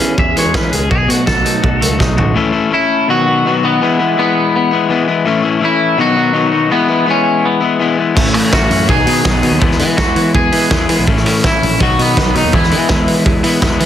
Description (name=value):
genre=indie rock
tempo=165 BPM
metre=4/4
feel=straight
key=E major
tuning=A4 = 440 Hz
part: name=electric guitar at the edge of break-up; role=riff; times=0.0-13.9 s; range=A2 to A4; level=-15 LUFS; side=left 5 dB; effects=none
part: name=twelve-string electric guitar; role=riff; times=0.0-2.4, 8.2-13.9 s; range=A2 to G#4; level=-21 LUFS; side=right 8 dB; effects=wide subtle chorus, slapback echo
part: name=modern bright picked electric bass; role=bass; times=0.0-2.3, 8.2-13.9 s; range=A1 to E3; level=-18 LUFS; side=right 1 dB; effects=none
part: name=twangy electric guitar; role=melody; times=0.2-13.6 s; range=B3 to E5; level=-16 LUFS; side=equal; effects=wide subtle chorus, slapback echo, plate reverb
part: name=loose indie drum kit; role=drums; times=0.2-2.3, 8.2-13.9 s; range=crash cymbal, hi-hat, kick drum, snare drum, toms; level=-15 LUFS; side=right 1 dB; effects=none
room=light reverb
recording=dense, heavily limited modern master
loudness=-10 LUFS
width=side -10 dB against mid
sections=0.0-2.4 A section; 2.4-13.9 B section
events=clean electric guitar solo 0.0-2.4; drum fill 2.0-2.4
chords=0.0 E6; 0.9 B7; 2.4 A; 3.1 B; 3.8 E; 5.3 A; 6.0 B; 6.7 E; 8.2 A; 8.9 B; 9.6 E; 11.1 A; 11.8 B; 12.5 E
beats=0.18 0.55 | 0.91 1.27 1.64 2.00 | 2.36 2.73 3.09 3.45 | 3.81 4.18 4.54 4.90 | 5.27 5.63 5.99 6.36 | 6.72 7.08 7.44 7.81 | 8.17 8.53 8.90 9.26 | 9.62 9.98 10.35 10.71 | 11.07 11.44 11.80 12.16 | 12.53 12.89 13.26 13.62